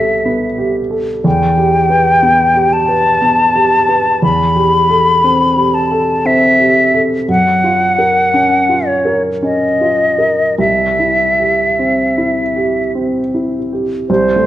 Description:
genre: classical, impressionist duo for flute and grand piano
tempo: 49-61 BPM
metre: 3/4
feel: rubato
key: C lydian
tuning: A4 = 440 Hz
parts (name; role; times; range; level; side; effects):
- silver concert flute; melody; 0.0-14.5 s; C5 to B5; -12 LUFS; left 1 dB; none
- warm grand piano; accompaniment; 0.0-14.5 s; C2 to B4; -15 LUFS; right 1 dB; none
room: moderate recital hall reverb, RT60 1.6 s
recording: worn, warbling old tape, cassette tape, warbly pitch drift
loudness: -10 LUFS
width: side -13 dB against mid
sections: 0.0-14.1 A section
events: none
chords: 0.0 Am9/C; 1.3 Em; 4.2 Am9/E; 7.3 F#maj7; 10.6 C

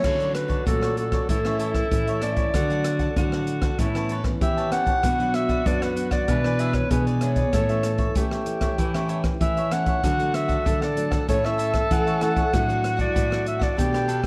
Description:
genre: samba and choro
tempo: 96 BPM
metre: 4/4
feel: straight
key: D major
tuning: A4 = 440 Hz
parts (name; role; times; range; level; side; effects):
- warm clarinet; melody; 0.0-14.1 s; A4 to F#5; -28 LUFS; equal; none
- breathy tenor saxophone; second line; 0.0-14.3 s; E4 to B4; -32 LUFS; equal; none
- cavaquinho; accompaniment; 0.0-14.3 s; D4 to A5; -37 LUFS; equal; none
- nylon-string guitar; accompaniment; 0.0-14.3 s; F#2 to E4; -34 LUFS; equal; none
- nylon-string guitar; bass; 0.0-14.3 s; A2 to B3; -30 LUFS; equal; none
- open jazz drum kit; drums; 0.0-14.3 s; crash cymbal, hi-hat, kick drum, rim click; -29 LUFS; equal; none
room: moderate large studio reverb, RT60 0.8 s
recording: dark, warm production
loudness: -23 LUFS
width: mono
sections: 0.0-14.3 A section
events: none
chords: 0.0 Dmaj7; 1.3 A; 2.5 D; 3.8 Aadd9; 5.0 Bm; 6.3 E7/B; 7.5 A; 10.0 D; 11.3 A; 12.5 Dadd9/A

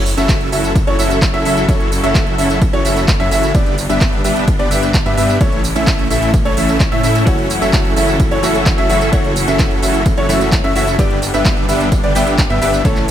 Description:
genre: EDM, festival progressive house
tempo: 129 BPM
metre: 4/4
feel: straight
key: F# phrygian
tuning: A4 = 441 Hz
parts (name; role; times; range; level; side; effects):
- clear symphonic string section; sustained chords; 0.0-13.1 s; E3 to A4; -23 LUFS; equal; sidechain pumping
- warm baby grand piano; arpeggios; 0.0-13.1 s; C#5 to E5; -20 LUFS; left 1 dB; sidechain pumping, ping-pong delay
- dense compressed supersaw; riff; 0.0-13.1 s; A3 to E5; -18 LUFS; right 1 dB; sidechain pumping, ping-pong delay
- wide detuned saw bass; bass; 0.0-13.1 s; F#1 to A2; -21 LUFS; equal; chorus, sidechain pumping
- big-room dance drum kit; drums; 0.1-13.1 s; handclaps, hi-hat, ride cymbal, tambourine; -22 LUFS; right 2 dB; overdrive
- electronic kick drum; drums; 0.3-12.9 s; none; -16 LUFS; equal; overdrive
- direct-recorded clean electric guitar; accompaniment; 7.3-13.1 s; G2 to A4; -22 LUFS; left 2 dB; ensemble chorus, sidechain pumping, ping-pong delay
room: light reverb, digital ambience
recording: none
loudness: -12 LUFS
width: side -10 dB against mid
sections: 0.0-13.1 A section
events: none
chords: 0.0 F#m7; 3.5 G; 5.4 A; 7.3 F#m7; 11.0 G

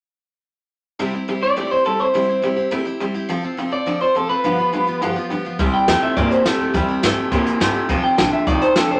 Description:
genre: rockabilly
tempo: 209 BPM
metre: 4/4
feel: straight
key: C major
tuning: A4 = 440 Hz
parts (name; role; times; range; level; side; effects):
- picked steel-string acoustic guitar; accompaniment; 1.0-9.0 s; G2 to A4; -27 LUFS; equal; none
- electric guitar through a small old amp; riff; 1.0-9.0 s; F2 to Bb3; -24 LUFS; equal; none
- electric guitar through a small old amp; melody; 1.4-9.0 s; G4 to G5; -21 LUFS; equal; none
- upright bass; bass; 5.6-9.0 s; F1 to A2; -29 LUFS; equal; none
- jazz brush drum kit; drums; 5.6-8.8 s; hi-hat, kick drum, snare drum; -23 LUFS; equal; none
room: moderate studio reverb, RT60 0.7 s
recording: none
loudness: -19 LUFS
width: mono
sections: 1.0-5.6 A section; 5.6-9.0 B section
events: none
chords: 1.0 C; 3.3 F; 4.4 G7; 5.6 C; 7.9 F

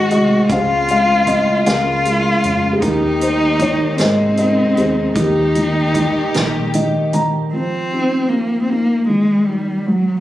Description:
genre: acoustic folk-pop ballad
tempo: 51 BPM (dotted quarters)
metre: 6/8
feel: straight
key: unclear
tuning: A4 = 440 Hz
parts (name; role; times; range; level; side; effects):
- felt-muted upright piano; melody; 0.0-10.2 s; Db3 to Bb5; -16 LUFS; equal; none
- dark cello; second line; 0.0-10.2 s; Gb3 to Gb4; -18 LUFS; left 1 dB; none
- dark studio string section; sustained chords; 0.0-7.5 s; C3 to G4; -25 LUFS; left 1 dB; none
- upright bass; bass; 0.1-7.4 s; Ab1 to F2; -26 LUFS; equal; none
- natural country drum kit; drums; 0.1-7.3 s; hi-hat, kick drum, snare drum; -25 LUFS; right 1 dB; none
room: moderate studio reverb, RT60 0.7 s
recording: recorded on a phone in the room, club reverb, compression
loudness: -14 LUFS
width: side -14 dB against mid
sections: 0.0-7.5 A section; 7.5-10.2 B section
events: felt piano fill 6.3-7.5; cello solo 7.5-10.2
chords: 0.5 Dbmaj7; 1.7 Bbm7/Db; 2.8 Eb; 4.0 Abadd9; 5.2 Eb; 7.5 Ebsus2

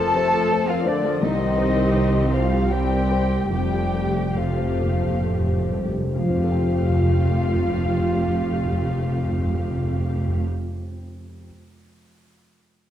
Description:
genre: cinematic, emotional film score for orchestra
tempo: 65-86 BPM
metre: 3/4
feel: rubato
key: F mixolydian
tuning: A4 = 439 Hz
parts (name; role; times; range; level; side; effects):
- muted cello; melody; 0.0-10.4 s; D4 to A4; -31 LUFS; right 2 dB; none
- muted studio violin section; melody; 0.0-10.4 s; D5 to A5; -35 LUFS; left 3 dB; none
- muted studio violin section; second line; 0.0-10.4 s; D5 to A5; -35 LUFS; left 3 dB; none
- silver concert flute; second line; 0.0-10.4 s; D5 to A5; -31 LUFS; left 1 dB; none
- dark grand piano; accompaniment; 0.0-11.5 s; C2 to G5; -28 LUFS; left 1 dB; none
- muted studio viola section; accompaniment; 0.0-10.4 s; C3 to A4; -30 LUFS; equal; none
- mellow French horn section; sustained chords; 0.0-10.4 s; D3 to F4; -29 LUFS; left 3 dB; none
- concert harp; arpeggios; 0.0-10.8 s; C3 to C6; -30 LUFS; left 7 dB; none
- muted studio cello section; bass; 1.2-10.4 s; C2 to C3; -30 LUFS; right 2 dB; none
- muted studio double bass section; bass; 1.2-10.4 s; F1 to C2; -27 LUFS; right 2 dB; none
- timpani; percussion; 3.5-10.4 s; F2; -24 LUFS; equal; none
room: wet recital hall reverb, RT60 1.5 s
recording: dark, warm production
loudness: -19 LUFS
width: side -11 dB against mid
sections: 0.0-6.1 A section; 6.1-11.4 B section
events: slowing down 0.2-6.1; timpani fill 3.5-6.1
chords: 0.0 F; 1.2 Cm; 3.5 Fadd9

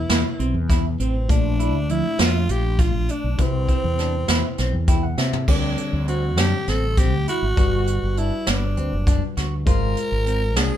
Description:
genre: progressive instrumental, band music in an uneven meter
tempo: 200 BPM (eighths)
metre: 7/8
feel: straight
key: C lydian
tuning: A4 = 439 Hz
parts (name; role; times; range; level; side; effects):
- growling tenor saxophone; melody; 0.0-10.8 s; C4 to Bb4; -27 LUFS; right 1 dB; none
- barky tine electric piano; accompaniment; 0.0-10.8 s; Bb2 to G5; -30 LUFS; left 5 dB; overdrive
- mellow fretless electric bass; bass; 0.0-10.7 s; F#1 to C3; -22 LUFS; equal; none
- clean electric guitar; arpeggios; 0.1-10.7 s; F3 to E5; -30 LUFS; right 1 dB; none
- jazz brush drum kit; drums; 0.1-10.7 s; crash cymbal, hi-hat, kick drum, snare drum, toms; -21 LUFS; equal; none
room: light reverb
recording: band playing live in one room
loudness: -18 LUFS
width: side -11 dB against mid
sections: 0.0-5.5 A section; 5.5-10.8 B section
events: tine electric piano fill 4.6-5.5; drum fill 5.2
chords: 0.0 Cmaj7; 1.3 Bbmaj7; 3.4 Cmaj7; 5.5 D7sus4; 7.6 Gmaj7; 9.7 Ab6

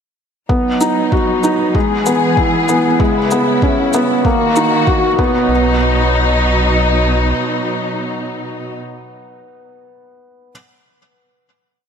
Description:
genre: piano and strings electronica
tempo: 96 BPM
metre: 4/4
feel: straight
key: B major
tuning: A4 = 440 Hz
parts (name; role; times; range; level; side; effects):
- warm symphonic string section; sustained chords; 0.5-8.8 s; B2 to G#4; -17 LUFS; left 1 dB; none
- felt-muted upright piano; riff; 0.5-10.5 s; G#3 to F#4; -16 LUFS; equal; tape echo
- electronic kick drum; drums; 0.5-5.3 s; none; -18 LUFS; equal; overdrive
- warm sub bass; bass; 0.8-7.3 s; B1 to E2; -17 LUFS; equal; sidechain pumping, high-pass filter
- shaker; drums; 0.8-4.7 s; none; -28 LUFS; right 1 dB; overdrive
room: moderate lush hall reverb, RT60 2.5 s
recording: none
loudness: -12 LUFS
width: side -7 dB against mid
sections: 0.5-5.5 build; 5.5-8.0 final hit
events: build-up 0.5-5.5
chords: 0.5 B; 1.8 E; 3.0 C#m7; 4.3 D#m; 5.2 B

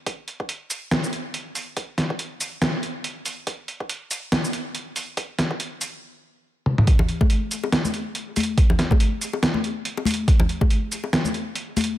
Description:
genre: dubstep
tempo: 141 BPM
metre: 4/4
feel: swing 57% on 16ths, half-time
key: none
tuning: none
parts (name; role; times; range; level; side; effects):
- electronic kick drum; drums; 0.1-10.7 s; none; -19 LUFS; equal; overdrive, high-pass filter on kick, high-pass filter on room
- trip hop sampler-style drum kit; drums; 0.1-11.9 s; hi-hat, shaker, snare drum, toms; -24 LUFS; equal; overdrive
- congas and bongos; percussion; 7.0-11.9 s; none; -26 LUFS; left 4 dB; dub echo
room: light reverb, digital ambience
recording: none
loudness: -21 LUFS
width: side -14 dB against mid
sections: 0.0-6.9 A section; 6.9-12.0 B section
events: build-up 0.0-6.9; drum fill 6.7; drop 6.9-12.0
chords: none

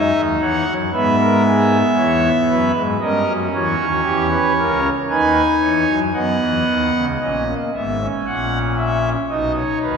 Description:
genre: classical, baroque-style 4-part fugue for pipe organ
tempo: 58 BPM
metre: 4/4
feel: straight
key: unclear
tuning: A4 = 440 Hz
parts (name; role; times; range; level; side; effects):
- pipe organ, foundations; solo; 0.0-10.0 s; G#1 to G#5; -15 LUFS; equal; none
room: wet church reverb, RT60 2.7 s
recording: recorded in a church or concert hall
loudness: -15 LUFS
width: side -6 dB against mid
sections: 0.0-7.2 A section; 7.2-10.0 B section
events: none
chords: 0.0 B (rootless); 0.9 C#m7/G#; 3.0 A#dim7; 5.1 B/D#; 7.2 F#7; 9.3 B

